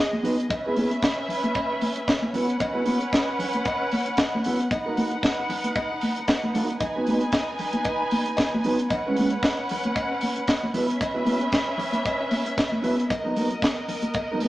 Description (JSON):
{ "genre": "disco", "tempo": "114 BPM", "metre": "4/4", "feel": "swing 56% on 16ths", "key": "C# dorian", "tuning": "A4 = 440 Hz", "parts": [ { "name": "dark studio string section", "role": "second line", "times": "0.0-14.5 s", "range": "B3 to G#5", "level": "-28 LUFS", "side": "equal", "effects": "none" }, { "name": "mellow electric guitar", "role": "accompaniment", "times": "0.1-14.5 s", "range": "F#3 to B4", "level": "-27 LUFS", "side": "right 1 dB", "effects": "none" }, { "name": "congas", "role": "percussion", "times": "0.1-14.5 s", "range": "none", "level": "-30 LUFS", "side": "equal", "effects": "none" }, { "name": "tight funk drum kit", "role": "drums", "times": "0.2-14.5 s", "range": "hi-hat, kick drum, snare drum", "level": "-27 LUFS", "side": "equal", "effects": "none" }, { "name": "cowbell", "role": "percussion", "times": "0.5-14.3 s", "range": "none", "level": "-31 LUFS", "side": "left 1 dB", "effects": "none" } ], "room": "wet stone room reverb, RT60 1.2 s", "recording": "band playing live in one room, small speaker sound", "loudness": "-22 LUFS", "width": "side -16 dB against mid", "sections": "0.0-14.5 A section", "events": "none", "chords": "0.0 G#m7; 0.5 C#m7; 2.3 F#7sus4; 4.7 Bmaj7; 6.8 G#m7; 8.9 C#m7/G#; 10.7 F#7sus4; 13.1 Bmaj7" }